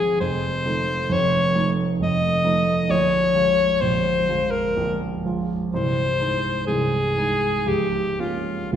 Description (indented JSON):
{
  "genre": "classical, romantic duo for alto saxophone and grand piano",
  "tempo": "55-68 BPM",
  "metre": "3/4",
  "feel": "rubato",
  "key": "unclear",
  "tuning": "A4 = 441 Hz",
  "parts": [
    { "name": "clear alto saxophone", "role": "melody", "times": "0.0-8.8 s", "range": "F4 to Eb5", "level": "-21 LUFS", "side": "left 3 dB", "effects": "none" },
    { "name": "warm grand piano", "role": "accompaniment", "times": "0.0-8.8 s", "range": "Bb0 to F4", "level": "-23 LUFS", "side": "right 3 dB", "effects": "none" }
  ],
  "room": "wet recital hall reverb, RT60 1.6 s",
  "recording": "recorded in a church or concert hall",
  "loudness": "-19 LUFS",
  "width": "side -9 dB against mid",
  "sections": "0.0-8.8 A section",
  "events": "none",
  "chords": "0.2 F7; 2.9 Bbm7; 5.7 Ab/C; 7.7 Bbm7/Db",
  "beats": "| 0.19 1.11 2.00 | 2.90 3.81 4.76 | 5.71 6.67 7.68 | 8.73"
}